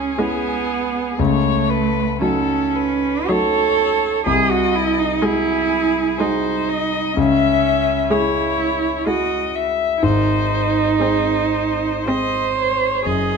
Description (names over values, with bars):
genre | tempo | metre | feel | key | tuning
classical, slow romantic movement for piano quartet | 53-65 BPM | 3/4 | rubato | unclear | A4 = 440 Hz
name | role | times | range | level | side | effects
muted violin | melody | 0.0-13.4 s | G#4 to E5 | -23 LUFS | left 9 dB | none
muted cello | second line | 0.0-13.4 s | A3 to B#4 | -19 LUFS | right 7 dB | none
dark concert grand piano | accompaniment | 0.0-13.4 s | F#1 to G#4 | -22 LUFS | left 4 dB | none
muted viola | accompaniment | 0.2-12.8 s | F#3 to B#3 | -26 LUFS | right 2 dB | none
room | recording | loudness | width
moderate recital hall reverb, RT60 1.8 s | close, detailed microphones | -16 LUFS | side -5 dB against mid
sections
0.0-13.4 A section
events
none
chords
0.0 C#m; 1.2 D#m7b5/C#; 4.3 G#7/B#; 7.2 C#m; 10.0 G#